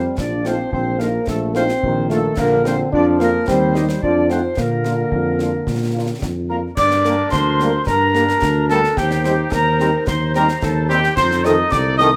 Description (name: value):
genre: military-style march for wind band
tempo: 109 BPM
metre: 2/4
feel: straight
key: Bb major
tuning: A4 = 440 Hz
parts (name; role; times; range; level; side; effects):
- warm euphonium; second line; 0.0-6.2 s; A3 to D4; -22 LUFS; equal; none
- warm woodwind section; second line; 0.0-12.2 s; D4 to D5; -28 LUFS; equal; none
- warm trombone section; sustained chords; 0.0-12.1 s; D3 to C4; -28 LUFS; equal; none
- mellow tuba; bass; 0.0-12.2 s; Bb1 to Bb2; -23 LUFS; equal; none
- concert snare drum, concert bass drum and clash cymbals; drums; 0.2-12.1 s; none; -30 LUFS; equal; none
- dark trumpet section; melody; 0.5-12.1 s; G4 to Gb5; -23 LUFS; equal; none
- warm French horn section; accompaniment; 0.5-12.1 s; G3 to Bb4; -26 LUFS; equal; none
- wooden piccolo; second line; 6.5-12.2 s; G5 to Eb6; -22 LUFS; equal; none
room: moderate large studio reverb, RT60 0.9 s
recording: none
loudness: -17 LUFS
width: mono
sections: 0.0-6.8 A section; 6.8-12.2 B section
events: none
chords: 0.2 F7/Bb; 2.4 Bb; 3.5 Cm/Eb; 4.0 F7; 4.6 Bb; 6.8 Gm; 9.0 Cm/Eb; 11.2 F7